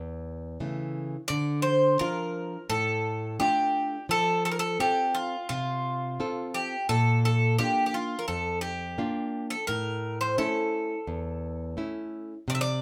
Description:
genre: greek folk.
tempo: 86 BPM.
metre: 4/4.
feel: straight.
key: D minor.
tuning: A4 = 440 Hz.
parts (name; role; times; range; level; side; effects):
Greek bouzouki; melody; 0.0-12.8 s; F4 to E5; -29 LUFS; equal; none.
nylon-string guitar; accompaniment; 0.0-12.8 s; E2 to A4; -32 LUFS; equal; none.
room: wet small room reverb, RT60 0.5 s.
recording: none.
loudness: -28 LUFS.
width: mono.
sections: 0.0-1.3 A section; 1.3-12.8 B section.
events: none.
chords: 0.0 A; 1.3 Dm; 4.1 F; 6.9 Bb; 9.7 A.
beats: 0.59 | 1.29 2.00 2.69 3.40 | 4.09 4.79 5.49 6.19 | 6.89 7.59 8.28 8.98 | 9.68 10.38 11.08 11.78 | 12.48.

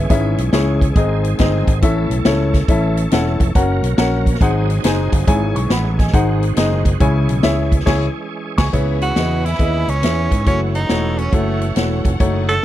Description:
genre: uptempo gospel.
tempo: 139 BPM.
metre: 4/4.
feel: swing 65% on 8ths.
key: C# minor.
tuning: A4 = 441 Hz.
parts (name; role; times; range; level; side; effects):
warm upright piano; accompaniment; 0.0-12.6 s; G#2 to C#6; -20 LUFS; left 3 dB; none.
bright tonewheel organ; sustained chords; 0.0-12.6 s; D#3 to A#4; -28 LUFS; right 4 dB; slow rotary speaker, overdrive, chorus vibrato.
fingered electric bass; bass; 0.0-12.6 s; E1 to G#2; -19 LUFS; equal; none.
swinging big-band drum kit; drums; 0.1-12.6 s; crash cymbal, hi-hat, kick drum, snare drum; -17 LUFS; equal; none.
warm studio string section; sustained chords; 8.7-12.6 s; B4 to B5; -32 LUFS; right 1 dB; none.
edgy tenor saxophone; melody; 9.0-12.6 s; A3 to A4; -21 LUFS; right 2 dB; none.
room: studio ambience.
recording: dry, close 1970s-style studio recording.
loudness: -14 LUFS.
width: side -13 dB against mid.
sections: 0.0-8.7 A section; 8.7-12.6 B section.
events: band accent 7.9-8.7.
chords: 0.1 C#m/G#; 1.0 G#; 1.8 A; 3.6 F#; 4.4 G#7; 5.3 C#m/G#; 6.1 G#7; 7.0 C#m; 8.7 C#m7; 10.5 F#m7.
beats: | 0.10 0.53 0.96 1.40 | 1.83 2.26 2.69 3.12 | 3.55 3.98 4.42 4.85 | 5.28 5.71 6.14 6.57 | 7.01 7.44 7.87 8.30 | 8.73 9.17 9.60 10.03 | 10.47 10.90 11.33 11.77 | 12.20 12.63.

